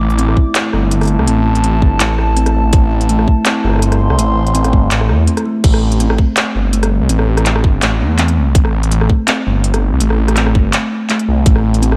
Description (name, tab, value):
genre	half-time drum and bass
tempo	165 BPM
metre	4/4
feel	swing 54% on 16ths, half-time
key	A minor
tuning	A4 = 439 Hz
part	dark analog pad	sustained chords	0.0-5.7 s	A3 to D6	-22 LUFS	equal	chorus, sidechain pumping
part	kalimba	arpeggios	0.0-12.0 s	A3 to C4	-21 LUFS	equal	diffuse ambient delay
part	phased detuned saw bass	bass	0.0-12.0 s	G1 to E2	-16 LUFS	equal	phaser
part	organic electronic drum kit	drums	0.1-12.0 s	crash cymbal, handclaps, hi-hat, rim click	-21 LUFS	equal	none
part	electronic kick drum	drums	0.4-11.5 s	none	-13 LUFS	equal	none
room	moderate lush hall reverb, RT60 1.6 s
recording	dreamy mix soaked in reverb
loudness	-13 LUFS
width	mono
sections	0.0-5.6 A section; 5.6-12.0 A section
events	drop 0.0-5.6, 5.6-12.0; break 5.3-5.6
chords	0.0 A5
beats	0.18 0.55 0.91 | 1.28 1.64 2.00 2.37 | 2.73 3.09 3.46 3.82 | 4.18 4.55 4.91 5.28 | 5.64 6.00 6.37 6.73 | 7.09 7.46 7.82 8.19 | 8.55 8.91 9.28 9.64 | 10.00 10.37 10.73 11.09 | 11.46 11.82